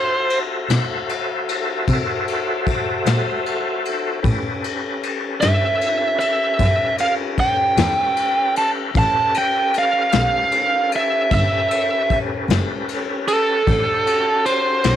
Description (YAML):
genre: slow blues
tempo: 51 BPM (dotted quarters)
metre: 12/8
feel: straight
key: unclear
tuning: A4 = 440 Hz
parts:
  - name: biting lead guitar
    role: melody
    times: 0.0-15.0 s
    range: A4 to A5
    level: -18 LUFS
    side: right 2 dB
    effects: overdrive
  - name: tonewheel organ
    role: sustained chords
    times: 0.0-15.0 s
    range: C#4 to E5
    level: -25 LUFS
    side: left 1 dB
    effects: slow rotary speaker, overdrive, chorus vibrato
  - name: vintage brush drum kit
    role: drums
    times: 0.3-15.0 s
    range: kick drum, ride cymbal, snare drum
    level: -24 LUFS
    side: left 5 dB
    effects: none
  - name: warm double bass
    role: bass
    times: 0.7-14.9 s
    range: F#1 to C3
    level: -20 LUFS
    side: equal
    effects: none
room: light reverb, small room ambience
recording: 1960s-style stereo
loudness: -17 LUFS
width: side -10 dB against mid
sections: 0.0-15.0 A section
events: none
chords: 0.0 D9 (rootless); 4.2 A13